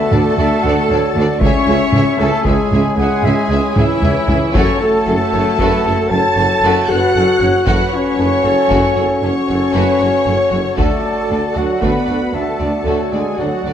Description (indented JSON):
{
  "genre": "cinematic, epic orchestral film score",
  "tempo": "77 BPM (dotted quarters)",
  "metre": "12/8",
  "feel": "straight",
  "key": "unclear",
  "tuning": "A4 = 440 Hz",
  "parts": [
    { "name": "warm symphonic violin section", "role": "melody", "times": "0.0-13.7 s", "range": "E5 to A6", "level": "-28 LUFS", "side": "left 4 dB", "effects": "none" },
    { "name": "mellow silver concert flute", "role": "second line", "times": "0.0-13.7 s", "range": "A4 to F#5", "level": "-24 LUFS", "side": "left 1 dB", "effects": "none" },
    { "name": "clear symphonic viola section", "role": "accompaniment", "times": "0.0-13.7 s", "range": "E4 to A5", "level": "-24 LUFS", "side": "right 2 dB", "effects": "none" },
    { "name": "mellow French horn section", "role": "sustained chords", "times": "0.0-13.7 s", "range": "E3 to A4", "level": "-18 LUFS", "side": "left 3 dB", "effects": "none" },
    { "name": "pipe organ, stopped flute", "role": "sustained chords", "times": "0.0-13.7 s", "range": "E4 to G#5", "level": "-24 LUFS", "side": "right 1 dB", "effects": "none" },
    { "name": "warm trumpet section", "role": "stabs", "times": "0.0-13.7 s", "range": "E4 to A5", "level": "-22 LUFS", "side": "right 1 dB", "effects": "none" },
    { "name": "warm symphonic violin section", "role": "second line", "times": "0.1-13.7 s", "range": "A3 to E5", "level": "-26 LUFS", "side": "left 3 dB", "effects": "none" },
    { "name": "bright symphonic cello section", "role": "bass", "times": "0.1-13.7 s", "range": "C#2 to F#2", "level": "-23 LUFS", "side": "right 2 dB", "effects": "none" },
    { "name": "rich symphonic double bass section", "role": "bass", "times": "0.1-13.7 s", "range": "F#1 to D2", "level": "-24 LUFS", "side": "right 2 dB", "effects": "none" },
    { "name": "warm tuba", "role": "bass", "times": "0.1-13.7 s", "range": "F#1 to D2", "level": "-22 LUFS", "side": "right 4 dB", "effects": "none" },
    { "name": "solo taiko drums", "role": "drums", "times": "0.1-12.3 s", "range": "none", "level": "-19 LUFS", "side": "equal", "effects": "none" }
  ],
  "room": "wet scoring stage reverb, RT60 1.9 s",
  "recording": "dark, warm production",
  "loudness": "-12 LUFS",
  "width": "side -9 dB against mid",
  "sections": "0.0-13.7 A section",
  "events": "drum fill 3.8-4.5",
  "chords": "0.0 D; 1.4 C#m; 4.5 F#m; 10.8 D"
}